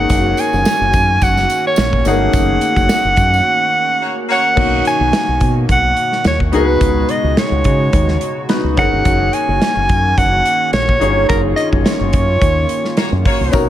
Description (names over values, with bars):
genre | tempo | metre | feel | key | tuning
polished 1980s jazz-funk pop | 107 BPM | 4/4 | swing 54% on 16ths | F# major | A4 = 440 Hz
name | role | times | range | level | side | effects
warm soprano saxophone | melody | 0.0-13.2 s | A#4 to G#5 | -16 LUFS | right 1 dB | none
warm concert grand piano | accompaniment | 0.0-13.7 s | A3 to C#5 | -20 LUFS | left 4 dB | wide subtle chorus
hollow soft pad | sustained chords | 0.0-13.7 s | B2 to F#4 | -24 LUFS | right 2 dB | chorus
fingered electric bass with an envelope filter | bass | 0.0-13.7 s | F#1 to C#3 | -18 LUFS | equal | none
modern studio drum kit | drums | 0.1-13.7 s | crash cymbal, hi-hat, kick drum, snare drum | -18 LUFS | equal | gated reverb
tambourine | percussion | 0.1-3.5, 13.5-13.7 s | none | -33 LUFS | right 9 dB | none
warm horn section | second line | 4.0-4.5, 13.0-13.6 s | A#3 to C#5 | -23 LUFS | equal | tape echo
room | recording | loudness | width
light reverb, small room reverb | none | -12 LUFS | side -12 dB against mid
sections
0.0-4.6 A section; 4.6-13.7 A section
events
band accent 2.3-4.6, 11.3-13.5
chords
0.0 F#6; 4.6 Bmaj7; 6.5 C#7sus4; 8.8 F#6